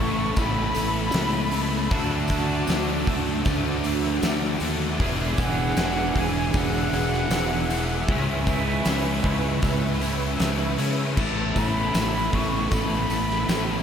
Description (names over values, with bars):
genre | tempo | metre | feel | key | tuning
rock, shoegaze and dream pop | 78 BPM | 4/4 | straight | A major | A4 = 439 Hz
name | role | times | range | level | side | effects
silver concert flute | melody | 0.0-13.8 s | E5 to C#6 | -30 LUFS | equal | diffuse ambient delay
analog string pad | sustained chords | 0.0-13.8 s | F#4 to D6 | -33 LUFS | right 1 dB | ensemble chorus
biting overdriven guitar | riff | 0.0-13.8 s | C#3 to A4 | -30 LUFS | right 8 dB | reverse reverb
distorted electric guitar | riff | 0.0-13.8 s | C#3 to A4 | -31 LUFS | equal | distortion
fuzz guitar | riff | 0.0-13.8 s | E2 to D4 | -30 LUFS | left 6 dB | distortion, ensemble chorus
fuzz fingered electric bass | bass | 0.0-13.8 s | E1 to C#3 | -28 LUFS | equal | overdrive
huge arena drum kit | drums | 0.4-13.7 s | crash cymbal, hi-hat, kick drum, snare drum | -27 LUFS | equal | none
tambourine | percussion | 0.4-13.7 s | none | -42 LUFS | right 4 dB | none
room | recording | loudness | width
moderate plate reverb, RT60 2.3 s | dreamy mix soaked in reverb | -21 LUFS | side -8 dB against mid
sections
0.0-13.8 A section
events
none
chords
0.0 Asus2; 1.9 Dadd9; 5.0 E7; 8.1 C#m7; 11.2 Asus2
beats
0.37 1.14 | 1.91 2.68 3.45 4.23 | 5.00 5.77 6.54 7.31 | 8.08 8.86 9.63 10.40 | 11.17 11.95 12.72 13.49